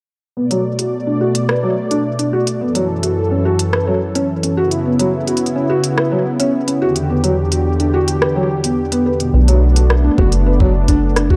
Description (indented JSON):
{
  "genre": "IDM",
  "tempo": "107 BPM",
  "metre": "4/4",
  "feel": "straight",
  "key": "B minor",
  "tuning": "A4 = 441 Hz",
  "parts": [
    { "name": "warm analog pad", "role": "sustained chords", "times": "0.4-11.4 s", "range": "E2 to D5", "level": "-21 LUFS", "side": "equal", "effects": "chorus, vintage 12-bit sampler grit" },
    { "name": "felt-muted upright piano", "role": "arpeggios", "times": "0.4-11.4 s", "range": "B2 to B4", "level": "-20 LUFS", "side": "equal", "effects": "low-pass filter, tape echo" },
    { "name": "organic electronic drum kit", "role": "drums", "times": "0.5-11.3 s", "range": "hi-hat, rim click", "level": "-23 LUFS", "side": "equal", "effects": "none" },
    { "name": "deep acid bass", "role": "bass", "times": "9.3-11.4 s", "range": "F#1 to B1", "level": "-15 LUFS", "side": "equal", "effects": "none" },
    { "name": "electronic kick drum", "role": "drums", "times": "10.2-11.4 s", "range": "none", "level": "-16 LUFS", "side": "equal", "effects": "none" }
  ],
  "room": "light reverb",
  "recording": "dry, gritty hardware recording",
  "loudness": "-16 LUFS",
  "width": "mono",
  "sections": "0.4-9.3 A section; 9.3-11.4 B section",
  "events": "filter sweep on felt piano 0.4-9.3",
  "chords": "0.4 Bm7; 2.6 F#m7; 4.6 C#m7; 6.8 Em7; 9.3 Bm7"
}